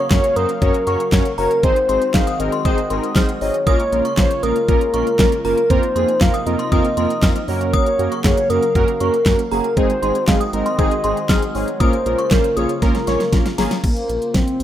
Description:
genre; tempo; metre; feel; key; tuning
synth-pop; 118 BPM; 4/4; straight; Bb minor; A4 = 438 Hz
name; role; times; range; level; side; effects
mellow horn-like synth lead; melody; 0.0-14.6 s; Bb3 to F5; -20 LUFS; left 1 dB; chorus
synth chime; second line; 0.0-13.7 s; Bb5 to F6; -27 LUFS; left 1 dB; ensemble chorus, phaser, tremolo, ping-pong delay
brassy analog pad; sustained chords; 0.0-14.6 s; C3 to F5; -28 LUFS; equal; chorus
analog synth brass; accompaniment; 0.1-13.7 s; Ab3 to Eb5; -22 LUFS; right 2 dB; chorus
round analog bass; bass; 0.1-14.6 s; Gb1 to Gb2; -24 LUFS; equal; none
pop drum kit; drums; 0.1-14.6 s; crash cymbal, handclaps, hi-hat, kick drum, snare drum; -18 LUFS; equal; none
room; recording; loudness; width
moderate plate reverb, RT60 2.1 s; rough home demo mix; -15 LUFS; side -11 dB against mid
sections
0.0-13.8 A section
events
drum fill 12.8-13.8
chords
0.0 Gbmaj7; 1.6 Ab7; 3.7 Bbm7; 5.7 F7sus4; 7.5 Gbmaj7; 9.8 Ab7; 11.8 Bbm7

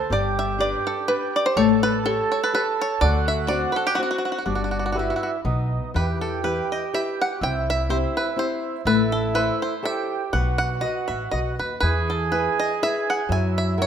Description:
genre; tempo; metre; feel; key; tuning
italian folk, Italian serenade; 123 BPM; 3/4; swing 54% on 8ths, rubato; G major, E harmonic minor from 5.9 s; A4 = 440 Hz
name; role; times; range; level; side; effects
bluegrass banjo; melody; 0.0-13.9 s; F#4 to G#5; -25 LUFS; equal; none
mellow accordion; second line; 0.0-13.9 s; D4 to A4; -26 LUFS; right 5 dB; none
flamenco guitar; accompaniment; 0.0-13.9 s; C3 to D#5; -27 LUFS; left 5 dB; none
upright bass; bass; 0.1-13.9 s; G1 to F#2; -26 LUFS; equal; none
room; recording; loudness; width
moderate scoring stage reverb, RT60 1.6 s; minimal, uncompressed stereo recording; -20 LUFS; side -8 dB against mid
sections
0.0-5.9 A section; 5.9-13.9 B section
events
none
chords
0.1 G; 1.6 A7; 3.0 D7; 4.5 Gmaj7; 5.4 B; 5.9 Em; 7.4 C; 8.9 Am; 10.3 B; 11.8 E; 13.3 F#7

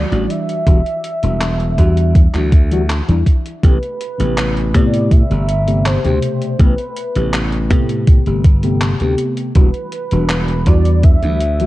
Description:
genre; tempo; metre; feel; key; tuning
vaporwave; 81 BPM; 4/4; straight; unclear; A4 = 440 Hz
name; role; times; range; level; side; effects
warm velvety synth lead; melody; 0.0-11.7 s; B4 to E5; -24 LUFS; right 1 dB; chorus, tape echo
mellow FM electric piano; accompaniment; 0.0-11.7 s; B2 to G4; -20 LUFS; left 1 dB; analog chorus
glassy slap bass; bass; 0.0-11.7 s; E1 to A2; -16 LUFS; equal; none
gated 80s digital drum machine; drums; 0.1-11.7 s; handclaps, hi-hat; -25 LUFS; equal; gated reverb, overdrive
electronic kick drum; drums; 0.7-11.2 s; none; -10 LUFS; equal; overdrive
room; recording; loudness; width
light reverb, digital ambience; dark, warm production, cassette tape; -12 LUFS; side -17 dB against mid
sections
0.0-3.6 A section; 3.6-11.7 B section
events
none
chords
0.0 Em9; 3.6 Am9; 9.6 Em9

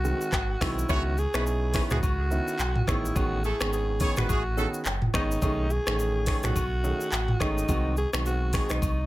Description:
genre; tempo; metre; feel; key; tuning
afrobeats; 106 BPM; 4/4; swing 58% on 16ths; C# minor; A4 = 440 Hz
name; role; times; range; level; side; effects
breathy alto saxophone; melody; 0.0-9.1 s; D#4 to G#4; -31 LUFS; equal; tape echo
warm concert grand piano; accompaniment; 0.0-8.8 s; D#3 to G#4; -33 LUFS; right 2 dB; none
sub bass with octave; bass; 0.0-9.1 s; F#1 to C#2; -29 LUFS; equal; none
afro-pop drum kit; drums; 0.0-9.0 s; finger snaps, handclaps, hi-hat, kick drum, rim click, shaker, toms; -28 LUFS; equal; none
woodblock and agogo bells; percussion; 0.3-9.0 s; none; -37 LUFS; left 3 dB; none
warm horn section; second line; 0.9-4.7 s; G#3 to C#5; -34 LUFS; right 1 dB; tape echo
room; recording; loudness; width
little or no reverb; none; -24 LUFS; side -17 dB against mid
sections
0.0-9.1 A section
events
none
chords
0.0 G#7; 0.9 C#m9; 2.9 Amaj9#11; 5.4 B13; 7.7 G#7

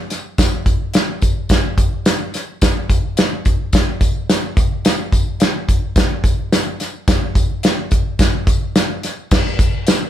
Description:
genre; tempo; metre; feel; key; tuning
soul; 108 BPM; 4/4; straight; none; none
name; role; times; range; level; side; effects
natural country drum kit; drums; 0.1-10.0 s; crash cymbal, hi-hat, kick drum, snare drum; -14 LUFS; equal; none
tambourine; percussion; 0.1-10.0 s; none; -30 LUFS; left 3 dB; none
room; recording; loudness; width
light reverb; band playing live in one room; -15 LUFS; side -11 dB against mid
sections
0.0-9.3 A section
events
none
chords
none

